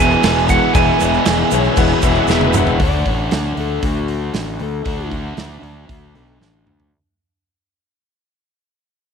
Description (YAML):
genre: classic rock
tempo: 117 BPM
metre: 4/4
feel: straight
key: unclear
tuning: A4 = 439 Hz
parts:
  - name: lightly driven lead guitar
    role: melody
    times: 0.0-2.2 s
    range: F#5 to G#5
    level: -19 LUFS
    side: right 7 dB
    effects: none
  - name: warm upright piano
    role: accompaniment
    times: 0.0-2.8 s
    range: E4 to F#5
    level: -23 LUFS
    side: left 11 dB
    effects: none
  - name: bright tonewheel organ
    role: sustained chords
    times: 0.0-2.8 s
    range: B3 to E5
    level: -26 LUFS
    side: equal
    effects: slow rotary speaker, chorus vibrato
  - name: biting overdriven guitar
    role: riff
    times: 0.0-6.9 s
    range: E2 to F#4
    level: -22 LUFS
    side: left 1 dB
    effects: none
  - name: overdriven semi-hollow guitar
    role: riff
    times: 0.0-2.8 s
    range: E2 to E3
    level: -21 LUFS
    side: equal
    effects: none
  - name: fuzz fingered electric bass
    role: bass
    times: 0.0-6.9 s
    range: E1 to D2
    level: -20 LUFS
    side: equal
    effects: overdrive
  - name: tube shaker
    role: percussion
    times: 0.1-2.7 s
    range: none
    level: -31 LUFS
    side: right 16 dB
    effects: none
  - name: big rock drum kit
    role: drums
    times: 0.2-6.9 s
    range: crash cymbal, hi-hat, kick drum, snare drum, toms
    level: -20 LUFS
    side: right 2 dB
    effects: none
  - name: electric slide guitar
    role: second line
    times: 1.5-5.1 s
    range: F#4 to F#5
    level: -25 LUFS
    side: left 13 dB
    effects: none
room: light reverb, small room ambience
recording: 1960s-style stereo with parts hard left and right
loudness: -14 LUFS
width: side -6 dB against mid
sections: 0.0-2.8 A section; 2.8-6.9 B section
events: drum fill 2.3-2.8, 6.4-6.9; fade-out 2.8-6.9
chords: 0.0 E; 2.8 D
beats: 0.24 | 0.75 1.26 1.78 2.29 | 2.80 3.32 3.83 4.34 | 4.86 5.38 5.89 6.41